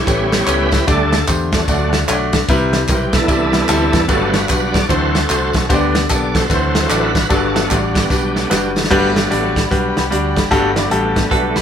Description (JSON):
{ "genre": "uptempo gospel", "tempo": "150 BPM", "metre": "4/4", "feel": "swing 62% on 8ths", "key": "G major", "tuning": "A4 = 440 Hz", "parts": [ { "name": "bright tonewheel organ", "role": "sustained chords", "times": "0.0-11.6 s", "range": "D3 to D5", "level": "-19 LUFS", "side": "right 2 dB", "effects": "slow rotary speaker, overdrive, chorus vibrato" }, { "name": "fingered electric bass", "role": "bass", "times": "0.0-11.6 s", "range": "F#1 to E2", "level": "-22 LUFS", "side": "equal", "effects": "none" }, { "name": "clear concert grand piano", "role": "accompaniment", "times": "0.1-11.6 s", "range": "G2 to D5", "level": "-17 LUFS", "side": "left 2 dB", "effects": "none" }, { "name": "natural country drum kit", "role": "drums", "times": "0.1-11.6 s", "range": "crash cymbal, hi-hat, kick drum, ride cymbal, snare drum", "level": "-18 LUFS", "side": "equal", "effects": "none" }, { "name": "tambourine and handclaps", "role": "percussion", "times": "0.1-8.8 s", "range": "none", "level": "-26 LUFS", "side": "right 1 dB", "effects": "none" }, { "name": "dark studio string section", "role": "sustained chords", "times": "8.9-11.6 s", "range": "D5 to B5", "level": "-28 LUFS", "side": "left 1 dB", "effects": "none" }, { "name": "clean electric guitar", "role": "second line", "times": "11.3-11.6 s", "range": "A4 to B4", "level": "-20 LUFS", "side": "right 6 dB", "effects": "phaser" } ], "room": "moderate studio ambience, RT60 0.5 s", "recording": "band playing live in one room", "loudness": "-13 LUFS", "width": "side -8 dB against mid", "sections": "0.0-8.9 A section; 8.9-11.6 B section", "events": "tonewheel organ solo 0.0-8.9; drum fill 8.1-8.9", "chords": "0.1 A9; 0.9 Dsus4; 1.7 D; 2.5 Cmaj7; 4.1 Gmaj7; 4.9 D7; 5.7 G/D; 6.5 D7; 7.3 Gmaj7" }